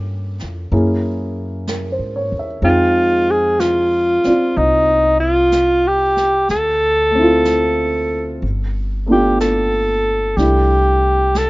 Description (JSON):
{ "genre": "jazz ballad", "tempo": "62 BPM", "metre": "4/4", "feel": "swing 69% on 8ths", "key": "unclear", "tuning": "A4 = 440 Hz", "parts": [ { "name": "warm grand piano", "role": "accompaniment", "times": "0.0-11.5 s", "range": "G3 to G5", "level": "-19 LUFS", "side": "equal", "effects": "none" }, { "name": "upright bass", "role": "bass", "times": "0.0-11.5 s", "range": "G1 to G#2", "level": "-21 LUFS", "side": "equal", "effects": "none" }, { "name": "jazz brush drum kit", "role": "drums", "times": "0.4-11.5 s", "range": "brushed snare drum, hi-hat, snare drum", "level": "-30 LUFS", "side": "equal", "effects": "none" }, { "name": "breathy alto saxophone", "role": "melody", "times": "2.6-11.5 s", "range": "Eb4 to A4", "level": "-14 LUFS", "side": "equal", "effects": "none" } ], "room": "small room ambience", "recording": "rough home demo mix, nothing above 7.5 kHz", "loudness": "-14 LUFS", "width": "side -21 dB against mid", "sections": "0.0-11.5 A section", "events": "none", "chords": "0.0 Gm7b5; 0.7 F#9; 2.6 Fm7; 6.5 Dm7; 8.4 G9; 10.4 C6" }